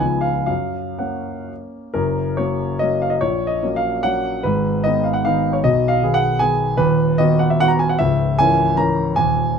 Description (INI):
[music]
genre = classical, romantic triple-time dance for piano with dotted rhythms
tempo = 114-167 BPM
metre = 3/4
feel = rubato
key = F# major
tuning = A4 = 441 Hz
[part]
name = warm grand piano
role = solo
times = 0.0-9.6 s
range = C#1 to A#5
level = -16 LUFS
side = equal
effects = none
[sound]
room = light reverb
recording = minimal, uncompressed stereo recording, faint mains hum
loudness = -16 LUFS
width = side -6 dB against mid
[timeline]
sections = 0.0-2.0 A section; 2.0-9.6 A section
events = none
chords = 0.0 C#9; 0.5 F#; 3.2 F#/A#; 4.4 G#m; 5.6 G#m/B; 6.8 B/D#; 8.0 A#dim/C#